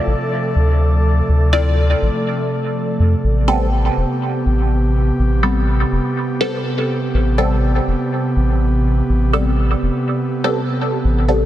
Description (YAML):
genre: dub techno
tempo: 123 BPM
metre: 4/4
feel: swing 54% on 16ths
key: A minor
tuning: A4 = 440 Hz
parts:
  - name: airy breathy pad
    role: sustained chords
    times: 0.0-11.5 s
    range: C3 to A4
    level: -20 LUFS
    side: right 1 dB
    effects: chorus, vintage 12-bit sampler grit
  - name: bubbling stepped-filter texture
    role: texture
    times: 0.0-3.3 s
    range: A3 to D5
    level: -27 LUFS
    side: equal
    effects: chorus, built-in reverb
  - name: soft dub sub bass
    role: bass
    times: 0.1-11.5 s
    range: E1 to F2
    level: -15 LUFS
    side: equal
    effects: none
  - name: filtered dub chord stab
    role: stabs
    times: 1.5-11.5 s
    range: G3 to D5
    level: -22 LUFS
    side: equal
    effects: phaser, dub echo
room: light reverb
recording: dense, heavily limited modern master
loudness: -15 LUFS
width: side -13 dB against mid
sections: 0.0-3.2 A section; 3.2-11.5 A section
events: none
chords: 0.0 Dm7; 3.2 Am9